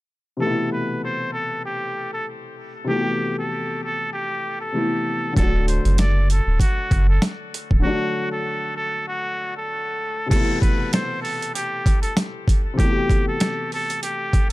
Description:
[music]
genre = hip hop, boom-bap hip-hop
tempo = 97 BPM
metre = 4/4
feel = swing 55% on 16ths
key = A dorian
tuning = A4 = 441 Hz
[part]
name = trumpet with straight mute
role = melody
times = 0.4-14.5 s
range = F#4 to D5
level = -26 LUFS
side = equal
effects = high-pass filter, low-pass filter, ping-pong delay
[part]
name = dark concert grand piano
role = accompaniment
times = 0.4-14.5 s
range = B2 to G4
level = -26 LUFS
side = left 2 dB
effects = cassette tape, high-pass filter, low-pass filter
[part]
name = soft dub sub bass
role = bass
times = 5.4-7.8 s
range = C#1 to F#1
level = -18 LUFS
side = equal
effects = none
[part]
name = boom bap sampler-style drum kit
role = drums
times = 5.4-14.5 s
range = crash cymbal, hi-hat, kick drum, snare drum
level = -20 LUFS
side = equal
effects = overdrive
[sound]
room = little or no reverb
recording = dark, warm production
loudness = -20 LUFS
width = side -18 dB against mid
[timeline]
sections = 0.4-10.3 A section; 10.3-14.5 B section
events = break 7.8-10.3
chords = 0.4 Amadd9; 5.4 D; 10.3 Amadd9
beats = | 0.42 1.04 1.66 2.27 | 2.89 3.51 4.13 4.75 | 5.37 5.98 6.60 7.22 | 7.84 8.46 9.08 9.70 | 10.31 10.93 11.55 12.17 | 12.79 13.41 14.03

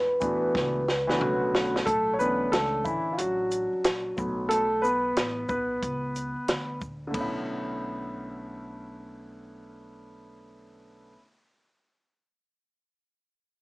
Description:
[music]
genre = hip hop, jazz-hop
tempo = 91 BPM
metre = 4/4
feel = swing 64% on 16ths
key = B minor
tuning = A4 = 440 Hz
[part]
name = vibraphone with soft mallets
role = melody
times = 0.0-1.5 s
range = B4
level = -27 LUFS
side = equal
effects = none
[part]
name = upright bass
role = bass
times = 0.0-11.1 s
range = A1 to E2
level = -39 LUFS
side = equal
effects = none
[part]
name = dark grand piano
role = accompaniment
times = 0.2-11.2 s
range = D3 to C#5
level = -28 LUFS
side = equal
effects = none
[part]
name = compact cocktail drum kit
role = drums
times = 0.2-7.3 s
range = hi-hat, kick drum, ride cymbal, shaker, snare drum, toms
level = -30 LUFS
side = equal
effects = none
[sound]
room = moderate studio reverb, RT60 0.6 s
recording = small speaker sound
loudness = -25 LUFS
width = side -23 dB against mid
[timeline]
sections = 0.0-1.9 A section; 1.9-7.1 B section; 7.1-9.8 C section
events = drum fill 0.5-1.9; grand piano solo 1.9-7.1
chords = 0.0 D69; 1.2 Bm9; 1.9 Bm11; 4.2 A69; 7.1 Bm11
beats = 0.55 1.21 | 1.87 2.53 3.19 3.85 | 4.50 5.16 5.82 6.48 | 7.14 7.80 8.46 9.12

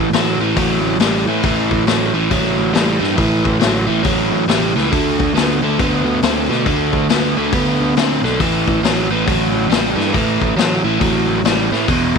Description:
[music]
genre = blues rock power trio and southern rock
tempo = 138 BPM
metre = 4/4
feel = swing 63% on 8ths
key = unclear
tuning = A4 = 440 Hz
[part]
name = biting overdriven guitar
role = riff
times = 0.0-12.2 s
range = E2 to C4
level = -16 LUFS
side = right 1 dB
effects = none
[part]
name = fuzz picked electric bass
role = bass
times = 0.0-12.2 s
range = E1 to B2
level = -20 LUFS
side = right 2 dB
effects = overdrive
[part]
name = vintage drum kit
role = drums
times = 0.1-12.2 s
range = hi-hat, kick drum, snare drum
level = -20 LUFS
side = left 5 dB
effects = none
[sound]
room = light reverb, studio reverb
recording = 1960s-style stereo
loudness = -13 LUFS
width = side -5 dB against mid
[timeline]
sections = 0.0-12.2 A section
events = none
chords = 0.0 A5; 4.9 D5; 8.4 A5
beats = 0.12 0.56 0.99 | 1.43 1.87 2.30 2.74 | 3.17 3.61 4.04 4.48 | 4.91 5.35 5.78 6.22 | 6.65 7.09 7.53 7.96 | 8.39 8.83 9.27 9.70 | 10.14 10.57 11.01 11.45 | 11.88

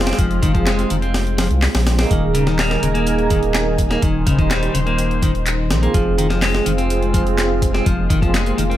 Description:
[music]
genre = breakbeat, breaks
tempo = 125 BPM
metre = 4/4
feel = straight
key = F minor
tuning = A4 = 440 Hz
[part]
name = lush unison pad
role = sustained chords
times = 0.0-8.8 s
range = Eb3 to Ab5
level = -24 LUFS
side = equal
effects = chorus, vintage 12-bit sampler grit, sidechain pumping
[part]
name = dark brass ensemble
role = stabs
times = 0.0-8.5 s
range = Bb3 to Ab4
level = -23 LUFS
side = right 5 dB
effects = vintage 12-bit sampler grit, ping-pong delay
[part]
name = saturated sub bass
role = bass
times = 0.0-8.8 s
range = Eb1 to C2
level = -20 LUFS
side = equal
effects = none
[part]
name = breakbeat sampler-style drum kit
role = drums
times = 0.0-8.7 s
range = hi-hat, kick drum, snare drum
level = -20 LUFS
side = equal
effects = none
[part]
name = clean electric guitar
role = riff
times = 0.1-8.8 s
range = Db3 to C4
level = -22 LUFS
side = left 2 dB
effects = vintage 12-bit sampler grit, ping-pong delay
[part]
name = house drum kit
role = drums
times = 0.1-8.8 s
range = handclaps, hi-hat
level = -27 LUFS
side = left 1 dB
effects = none
[sound]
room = little or no reverb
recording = none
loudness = -15 LUFS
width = side -13 dB against mid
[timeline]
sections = 0.0-8.8 A section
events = none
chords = 0.0 Fm; 2.1 Ebsus4; 5.9 Fm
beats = | 0.19 0.67 1.15 1.63 | 2.11 2.59 3.07 3.55 | 4.03 4.51 4.99 5.47 | 5.95 6.43 6.91 7.39 | 7.87 8.35

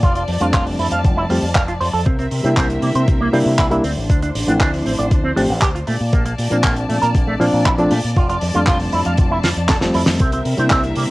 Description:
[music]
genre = nu-disco, nu disco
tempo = 118 BPM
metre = 4/4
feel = straight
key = unclear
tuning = A4 = 440 Hz
[part]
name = rich studio string section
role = sustained chords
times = 0.0-11.1 s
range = F3 to A5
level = -26 LUFS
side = left 1 dB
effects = sidechain pumping, cassette tape
[part]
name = electric guitar with an envelope filter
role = riff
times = 0.0-11.0 s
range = A3 to F5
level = -22 LUFS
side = right 2 dB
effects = lush chorus, vintage 12-bit sampler grit, cassette tape
[part]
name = fingered electric bass with an envelope filter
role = bass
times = 0.0-11.1 s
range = F1 to C3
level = -21 LUFS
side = equal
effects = none
[part]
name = damped 70s drum kit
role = drums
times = 0.0-11.1 s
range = handclaps, hi-hat, snare drum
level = -23 LUFS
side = equal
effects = cassette tape
[part]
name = electronic kick drum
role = drums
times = 0.0-10.8 s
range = none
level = -16 LUFS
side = equal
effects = cassette tape
[part]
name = reed electric piano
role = accompaniment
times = 0.4-11.1 s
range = F3 to G4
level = -20 LUFS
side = equal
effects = fast tremolo, sidechain pumping, cassette tape, tape echo
[sound]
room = moderate studio reverb, RT60 0.6 s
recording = home recording on cassette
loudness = -14 LUFS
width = side -20 dB against mid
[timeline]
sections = 0.0-11.1 A section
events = drum fill 9.4-10.2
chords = 0.0 F6; 2.1 C7; 3.8 Dm7; 5.9 Bbmaj7; 8.2 F6; 10.2 C7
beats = | 0.03 0.54 1.05 1.55 | 2.06 2.57 3.08 3.59 | 4.10 4.61 5.11 5.62 | 6.13 6.64 7.15 7.66 | 8.16 8.67 9.18 9.69 | 10.20 10.71

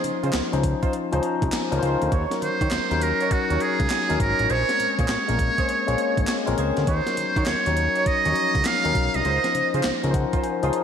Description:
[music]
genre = R&B, new jack swing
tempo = 101 BPM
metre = 4/4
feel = swing 65% on 16ths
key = Eb dorian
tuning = A4 = 442 Hz
[part]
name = trumpet with metal mute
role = melody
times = 0.0-9.7 s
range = Gb4 to F5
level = -24 LUFS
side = right 3 dB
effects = tape echo
[part]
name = barky tine electric piano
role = accompaniment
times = 0.0-10.8 s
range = F3 to C6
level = -26 LUFS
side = left 5 dB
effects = none
[part]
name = fat analog bass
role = bass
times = 0.0-10.7 s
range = Ab1 to Eb3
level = -26 LUFS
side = equal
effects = none
[part]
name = gated 80s digital drum machine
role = drums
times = 0.0-10.8 s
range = handclaps, hi-hat, kick drum, snare drum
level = -27 LUFS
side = equal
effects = gated reverb, gated reverb snare, overdrive
[part]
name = warm horn section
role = stabs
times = 0.2-10.8 s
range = Db4 to Db5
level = -31 LUFS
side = right 3 dB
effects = tape echo
[sound]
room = wet lush hall reverb, RT60 1.8 s, digital ambience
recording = dreamy mix soaked in reverb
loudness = -20 LUFS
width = side -8 dB against mid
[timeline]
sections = 0.0-10.8 A section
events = tine electric piano fill 0.9-2.1, 9.8-10.8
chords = 0.0 Dbmaj9; 2.1 Ebm7; 4.5 Bbm9; 6.9 Ebm7; 9.2 Dbmaj9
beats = 0.34 0.93 1.52 | 2.12 2.71 3.31 3.90 | 4.50 5.09 5.68 6.28 | 6.87 7.46 8.06 8.65 | 9.25 9.84 10.44

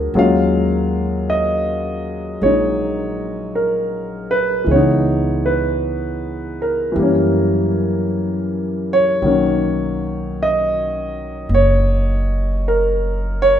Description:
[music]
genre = jazz ballad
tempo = 53 BPM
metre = 4/4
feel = swing 68% on 8ths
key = unclear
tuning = A4 = 440 Hz
[part]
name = warm concert grand piano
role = accompaniment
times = 0.0-13.6 s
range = Bb2 to F5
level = -17 LUFS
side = equal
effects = none
[part]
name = upright bass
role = bass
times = 0.0-13.6 s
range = F#1 to Gb2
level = -22 LUFS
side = equal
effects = none
[sound]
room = moderate large studio reverb, RT60 1.4 s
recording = minimal, uncompressed stereo recording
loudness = -16 LUFS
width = side -10 dB against mid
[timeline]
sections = 0.0-9.2 A section; 9.2-13.6 B section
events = none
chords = 0.2 Ebm11; 4.7 Dbm7; 6.9 Gb7b9; 9.2 Bmaj9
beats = | 0.15 1.28 2.41 3.54 | 4.67 5.81 6.94 8.09 | 9.23 10.37 11.50 12.63

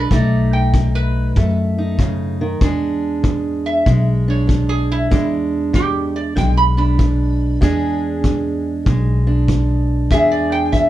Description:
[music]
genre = acoustic country blues, solo or duo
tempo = 96 BPM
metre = 4/4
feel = swing 64% on 8ths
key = E mixolydian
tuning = A4 = 440 Hz
[part]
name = metal-body resonator slide guitar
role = melody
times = 0.0-10.9 s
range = E4 to B5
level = -20 LUFS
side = right 1 dB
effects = none
[part]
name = fingerpicked steel-string acoustic guitar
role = accompaniment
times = 0.0-10.9 s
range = E2 to G#4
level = -20 LUFS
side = right 2 dB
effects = none
[part]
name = upright bass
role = bass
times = 0.0-10.9 s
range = B1 to F#2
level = -18 LUFS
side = left 1 dB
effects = none
[part]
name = kick drum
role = drums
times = 0.1-10.9 s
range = none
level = -18 LUFS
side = equal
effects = none
[sound]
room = light reverb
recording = dark, warm production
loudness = -14 LUFS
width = side -14 dB against mid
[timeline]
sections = 0.0-2.6 A section; 2.6-10.9 B section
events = resonator guitar played with a steel bar solo 2.6-10.9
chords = 0.1 B7; 2.6 E7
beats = | 0.11 0.74 1.36 1.99 | 2.62 3.24 3.87 4.49 | 5.12 5.74 6.37 6.99 | 7.62 8.24 8.86 9.49 | 10.11 10.73

